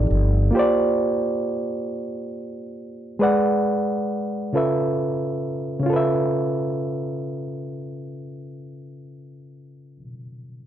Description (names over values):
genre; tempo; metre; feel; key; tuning
slow six-eight R&B; 45 BPM (dotted quarters); 6/8; straight; unclear; A4 = 440 Hz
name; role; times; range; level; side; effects
overdriven reed electric piano; accompaniment; 0.0-10.7 s; C#3 to F#5; -22 LUFS; right 1 dB; plate reverb
fretless electric bass; bass; 0.0-0.5 s; G1; -18 LUFS; equal; none
room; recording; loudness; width
light reverb; dark, warm production; -20 LUFS; side -10 dB against mid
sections
0.0-5.9 A section; 5.9-8.5 B section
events
none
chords
0.0 F13; 0.5 A#69; 3.2 G#m7b5; 4.5 C#7alt